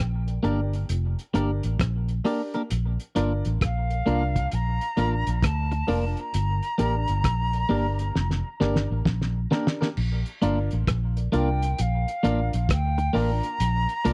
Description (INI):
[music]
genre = roots reggae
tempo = 66 BPM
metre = 4/4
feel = swing 64% on 16ths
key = Bb major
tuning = A4 = 441 Hz
[part]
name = silver concert flute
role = melody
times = 0.0-14.1 s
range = F5 to Bb5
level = -32 LUFS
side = equal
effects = dub echo
[part]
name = vintage muted fingered electric bass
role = bass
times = 0.0-14.1 s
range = F1 to D2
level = -28 LUFS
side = equal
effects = none
[part]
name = warm upright piano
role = stabs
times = 0.3-14.1 s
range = D4 to D5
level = -35 LUFS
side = equal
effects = none
[part]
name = cloth-damped thuddy drum kit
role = drums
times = 0.3-14.1 s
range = crash cymbal, hi-hat, kick drum, rim click, snare drum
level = -29 LUFS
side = equal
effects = none
[part]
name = clean electric guitar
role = accompaniment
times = 0.4-14.1 s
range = Bb3 to Bb4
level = -30 LUFS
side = equal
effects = dub echo
[sound]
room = little or no reverb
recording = dry, close 1970s-style studio recording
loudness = -25 LUFS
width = mono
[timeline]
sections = 0.0-10.0 A section; 10.0-14.1 B section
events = drum fill 8.2-10.0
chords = 0.0 Gm; 2.7 Bb; 6.3 Gm; 10.0 Bb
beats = 0.89 1.80 | 2.70 3.61 4.52 5.43 | 6.33 7.24 8.15 9.06 | 9.97 10.88 11.78 12.69 | 13.60